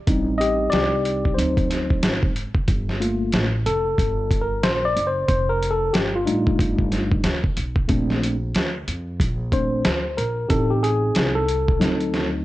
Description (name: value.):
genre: hip hop, jazz-hop.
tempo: 92 BPM.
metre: 4/4.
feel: swing 62% on 16ths.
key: G minor.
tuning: A4 = 441 Hz.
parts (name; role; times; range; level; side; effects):
tine electric piano; accompaniment; 0.1-12.4 s; F#3 to Eb5; -22 LUFS; left 1 dB; medium stereo tremolo.
upright bass; bass; 0.1-12.4 s; F1 to F2; -26 LUFS; equal; none.
dusty soul sampler-style drum kit; drums; 0.1-12.3 s; hi-hat, kick drum, snare drum; -22 LUFS; equal; overdrive, vintage 12-bit sampler grit.
room: light reverb, digital ambience.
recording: worn, warbling old tape, cassette tape, warbly pitch drift.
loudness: -19 LUFS.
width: side -16 dB against mid.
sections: 0.0-2.7 A section; 2.7-12.4 B section.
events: tine electric piano solo 0.0-2.7, 2.7-12.4; drum fill 11.8-12.4.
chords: 0.1 Am7b5; 1.4 D7b9; 2.7 Gm9; 5.3 F13; 7.9 Bbmaj9; 10.5 Am7b5; 11.8 D7b9.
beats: | 0.07 0.72 1.38 2.03 | 2.68 3.33 3.98 4.64 | 5.29 5.94 6.59 7.25 | 7.90 8.55 9.20 9.85 | 10.51 11.16 11.81.